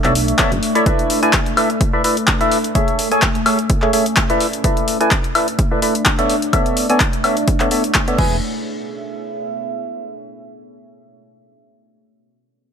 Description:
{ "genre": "piano house", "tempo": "127 BPM", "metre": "4/4", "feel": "swing 54% on 16ths", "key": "E mixolydian", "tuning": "A4 = 445 Hz", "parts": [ { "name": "percussive organ stab", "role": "riff", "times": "0.0-8.4 s", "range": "A3 to G#5", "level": "-18 LUFS", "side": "equal", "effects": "wide subtle chorus, cassette tape, sidechain pumping, ping-pong delay" }, { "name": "solid FM bass", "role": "bass", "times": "0.0-0.6, 8.2-8.4 s", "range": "E1 to B1", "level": "-21 LUFS", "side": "equal", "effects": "sidechain pumping" }, { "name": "punchy analog drum machine", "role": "drums", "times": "0.0-8.3 s", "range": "crash cymbal, handclaps, hi-hat, woodblock", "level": "-19 LUFS", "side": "left 2 dB", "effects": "overdrive" }, { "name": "deep dark ambient pad", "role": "texture", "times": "0.0-10.3 s", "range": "B2 to C#6", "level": "-23 LUFS", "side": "right 1 dB", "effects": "chorus, built-in reverb, sidechain pumping" }, { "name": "electronic kick drum", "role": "drums", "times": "0.4-8.3 s", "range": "none", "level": "-19 LUFS", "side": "equal", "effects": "overdrive" } ], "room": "light reverb", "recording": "none", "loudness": "-14 LUFS", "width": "side -7 dB against mid", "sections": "0.0-8.4 A section; 8.4-10.3 B section", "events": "filter sweep on synth stab 0.0-8.4", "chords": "0.0 Bm11; 0.9 Amaj7; 6.3 Bm11; 8.2 E" }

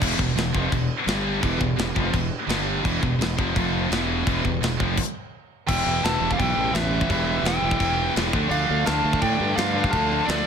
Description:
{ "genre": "heavy metal", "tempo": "170 BPM", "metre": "4/4", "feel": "straight", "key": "E phrygian", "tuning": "A4 = 445 Hz", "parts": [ { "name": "dark chamber string section", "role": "sustained chords", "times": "0.0-10.5 s", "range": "C3 to F5", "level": "-37 LUFS", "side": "equal", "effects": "none" }, { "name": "scooped high-gain guitar", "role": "riff", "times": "0.0-10.5 s", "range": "E2 to D4", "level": "-28 LUFS", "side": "left 15 dB", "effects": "distortion" }, { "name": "scooped high-gain guitar", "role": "riff", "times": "0.0-10.5 s", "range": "E2 to D4", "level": "-28 LUFS", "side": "right 11 dB", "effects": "distortion" }, { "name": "thick fuzz guitar", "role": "riff", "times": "0.0-10.5 s", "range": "E2 to B4", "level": "-30 LUFS", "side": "equal", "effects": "distortion" }, { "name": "fuzz fingered electric bass", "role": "bass", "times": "0.0-10.4 s", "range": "E1 to A2", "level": "-28 LUFS", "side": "equal", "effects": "overdrive" }, { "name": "tight metal drum kit", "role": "drums", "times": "0.0-10.4 s", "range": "china cymbal, crash cymbal, kick drum, snare drum", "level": "-27 LUFS", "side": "equal", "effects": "none" }, { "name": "high-gain lead guitar", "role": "melody", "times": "5.7-10.5 s", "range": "D5 to A5", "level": "-26 LUFS", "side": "left 1 dB", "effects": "distortion, ping-pong delay" }, { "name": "clear oboe", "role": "second line", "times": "5.7-10.5 s", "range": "A4 to F5", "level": "-32 LUFS", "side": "right 5 dB", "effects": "none" } ], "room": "light reverb", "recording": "none", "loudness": "-20 LUFS", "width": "side -7 dB against mid", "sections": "0.0-5.7 A section; 5.7-10.5 B section", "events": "stop 5.0-5.7", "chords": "0.0 Em; 1.1 G5; 1.4 Em; 2.5 G5; 2.8 Em; 3.6 F5; 3.9 Em; 5.0 N.C.; 5.7 Em; 8.3 Dm" }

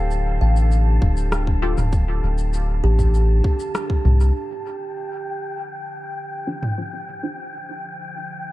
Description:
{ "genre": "ambient dub", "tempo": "99 BPM", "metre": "4/4", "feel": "straight", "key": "D minor", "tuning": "A4 = 440 Hz", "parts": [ { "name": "warbly tape-like pad", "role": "sustained chords", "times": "0.0-8.5 s", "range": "D3 to F5", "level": "-33 LUFS", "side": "left 2 dB", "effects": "chorus, built-in reverb" }, { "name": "kalimba", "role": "arpeggios", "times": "0.0-4.2 s", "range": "G4 to G5", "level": "-31 LUFS", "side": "right 4 dB", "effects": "dub echo" }, { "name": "soft dub sub bass", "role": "bass", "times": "0.0-4.3 s", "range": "D1 to C2", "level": "-17 LUFS", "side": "equal", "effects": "tube saturation" }, { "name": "wind-like tuned noise texture", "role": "texture", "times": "0.0-8.5 s", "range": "G5 to A5", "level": "-33 LUFS", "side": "left 2 dB", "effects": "built-in reverb" }, { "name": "organic electronic drum kit", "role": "drums", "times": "0.1-6.7 s", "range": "rim click, shaker, toms", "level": "-28 LUFS", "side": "equal", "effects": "studio reverb, dub echo" }, { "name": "electronic kick drum", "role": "drums", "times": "1.0-4.0 s", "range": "none", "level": "-20 LUFS", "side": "equal", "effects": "studio reverb" }, { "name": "filtered dub chord stab", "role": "stabs", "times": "1.6-1.8, 6.5-7.4 s", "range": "D4 to C5", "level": "-31 LUFS", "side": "left 3 dB", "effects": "phaser, wide subtle chorus, dub echo" } ], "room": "digital ambience", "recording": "echo-heavy mix", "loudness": "-18 LUFS", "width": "side -17 dB against mid", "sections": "0.0-4.4 A section; 4.4-8.5 B section", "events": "none", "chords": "0.0 Fadd9/D; 4.4 Dm9" }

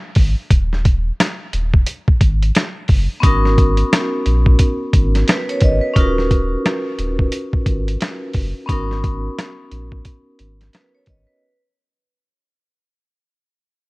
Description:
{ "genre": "hip hop, boom-bap hip-hop", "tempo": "88 BPM", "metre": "4/4", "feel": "swing 61% on 16ths", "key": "unclear", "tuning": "A4 = 439 Hz", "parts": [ { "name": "saturated sub bass", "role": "bass", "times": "0.2-11.3 s", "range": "Eb1 to Bb1", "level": "-18 LUFS", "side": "equal", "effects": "none" }, { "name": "boom bap sampler-style drum kit", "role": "drums", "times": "0.2-11.3 s", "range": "hi-hat, kick drum, rim click, snare drum", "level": "-15 LUFS", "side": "equal", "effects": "none" }, { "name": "vibraphone with medium hard mallets", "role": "accompaniment", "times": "3.2-11.6 s", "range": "Cb4 to Eb5", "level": "-21 LUFS", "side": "equal", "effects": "cassette tape" } ], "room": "little or no reverb", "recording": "worn, warbling old tape, cassette tape, warbly pitch drift", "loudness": "-14 LUFS", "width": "side -24 dB against mid", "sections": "0.0-6.0 A section; 6.0-11.4 B section", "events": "break 0.0-3.2; fade-out 6.0-11.4", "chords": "0.0 N.C.; 3.2 Abm11; 6.0 Ebm7; 8.7 Abm11" }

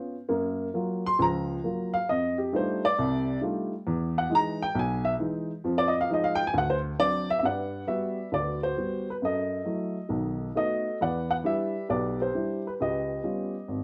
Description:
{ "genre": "solo jazz", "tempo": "135 BPM", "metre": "4/4", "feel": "swing 66% on 8ths", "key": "G major from 7.4 s", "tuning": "A4 = 440 Hz", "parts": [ { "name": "dark upright piano", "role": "solo", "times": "0.0-13.8 s", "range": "G#1 to C6", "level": "-28 LUFS", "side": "equal", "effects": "none" } ], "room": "moderate club reverb, RT60 0.7 s", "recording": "none", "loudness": "-28 LUFS", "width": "mono", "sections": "0.0-7.4 A section; 7.4-13.8 B section", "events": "upright piano solo 0.0-7.4", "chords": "0.3 Gbmaj7; 2.1 F13; 3.9 Emaj7; 5.6 Fm7; 6.5 D7; 7.4 Gmaj7; 9.2 F#m7; 10.1 B7; 11.0 Em7; 12.8 C#7#11" }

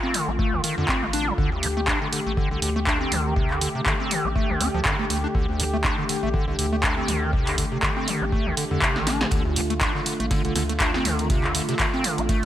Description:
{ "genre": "acid house", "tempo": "121 BPM", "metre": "4/4", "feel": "swing 56% on 16ths", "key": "D minor", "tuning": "A4 = 441 Hz", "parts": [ { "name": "warm analog pad", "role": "sustained chords", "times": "0.0-12.5 s", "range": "D3 to G4", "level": "-29 LUFS", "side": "equal", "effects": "chorus, sidechain pumping" }, { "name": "acid bass, square", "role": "riff", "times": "0.0-12.4 s", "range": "D2 to D4", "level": "-26 LUFS", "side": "equal", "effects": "overdrive, analog chorus, cassette tape, digital delay" }, { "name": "punchy analog drum machine", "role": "drums", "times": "0.1-12.5 s", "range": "handclaps, hi-hat, snare drum", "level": "-26 LUFS", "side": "equal", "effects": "none" }, { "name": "round analog bass", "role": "bass", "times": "0.3-12.5 s", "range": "A1 to G2", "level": "-29 LUFS", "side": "equal", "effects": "sidechain pumping" }, { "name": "electronic kick drum", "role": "drums", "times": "0.4-12.4 s", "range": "none", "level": "-26 LUFS", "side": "equal", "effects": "none" }, { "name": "raw garage drum kit", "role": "drums", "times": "9.3-12.5 s", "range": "hi-hat, snare drum", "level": "-40 LUFS", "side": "left 2 dB", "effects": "none" } ], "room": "light reverb", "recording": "none", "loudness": "-21 LUFS", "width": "side -12 dB against mid", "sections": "0.0-12.5 A section", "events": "drum fill 8.9-9.3", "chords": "0.0 Dm" }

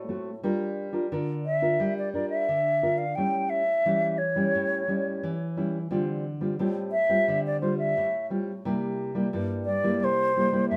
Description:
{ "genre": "samba", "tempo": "88 BPM", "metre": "4/4", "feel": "straight", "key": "unclear", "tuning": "A4 = 443 Hz", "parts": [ { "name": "hollow wooden flute", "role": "melody", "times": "0.0-10.8 s", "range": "C5 to G5", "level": "-27 LUFS", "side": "equal", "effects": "none" }, { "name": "nylon-string guitar", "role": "accompaniment", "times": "0.0-10.8 s", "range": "G2 to Bb4", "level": "-30 LUFS", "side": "equal", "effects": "none" } ], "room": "moderate studio reverb, RT60 0.6 s", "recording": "none", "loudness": "-27 LUFS", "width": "mono", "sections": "0.0-10.8 A section", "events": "none", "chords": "0.4 Gm7; 3.2 A7; 5.9 Dm7; 8.7 C7" }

